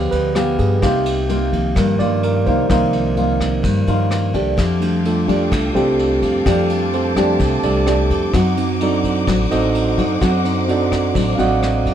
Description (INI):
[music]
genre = bossa nova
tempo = 128 BPM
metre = 4/4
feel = straight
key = F mixolydian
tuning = A4 = 440 Hz
[part]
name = bright tine electric piano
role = accompaniment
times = 0.0-11.9 s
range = Eb3 to F#5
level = -20 LUFS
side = right 4 dB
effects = none
[part]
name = nylon-string guitar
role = accompaniment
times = 0.0-11.9 s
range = G2 to Ab4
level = -20 LUFS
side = left 1 dB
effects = none
[part]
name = upright bass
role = bass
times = 0.0-11.9 s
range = A1 to G2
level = -21 LUFS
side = equal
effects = none
[part]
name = vintage brush drum kit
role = drums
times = 0.1-11.9 s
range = kick drum, ride cymbal, rim click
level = -26 LUFS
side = equal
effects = none
[part]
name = muted studio string section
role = sustained chords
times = 4.6-11.9 s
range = A4 to D6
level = -26 LUFS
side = left 1 dB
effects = none
[sound]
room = light reverb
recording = dark, warm production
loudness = -15 LUFS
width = side -10 dB against mid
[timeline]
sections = 0.0-11.9 A section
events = tine electric piano solo 0.0-11.9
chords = 0.0 G7b9; 0.8 Cm11; 4.6 F69; 8.3 D7b9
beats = 0.36 | 0.83 1.29 1.76 2.23 | 2.70 3.17 3.64 4.11 | 4.58 5.05 5.52 5.99 | 6.46 6.93 7.39 7.87 | 8.33 8.80 9.27 9.74 | 10.21 10.68 11.15 11.62